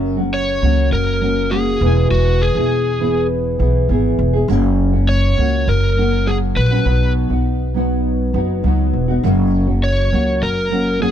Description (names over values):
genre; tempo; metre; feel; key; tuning
acoustic pop; 101 BPM; 4/4; straight; F# mixolydian; A4 = 440 Hz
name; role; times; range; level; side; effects
nylon-string guitar; accompaniment; 0.0-11.1 s; F#2 to G#4; -18 LUFS; equal; double-tracked left and right
upright bass; bass; 0.0-11.1 s; E1 to C#2; -17 LUFS; equal; none
overdriven slide guitar; melody; 0.3-11.1 s; F#4 to C#5; -20 LUFS; equal; none
room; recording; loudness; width
small room ambience; dry, close 1970s-style studio recording; -14 LUFS; side -10 dB against mid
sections
0.0-11.1 A section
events
none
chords
0.0 F#; 1.8 E; 4.5 F#; 6.9 B; 9.2 F#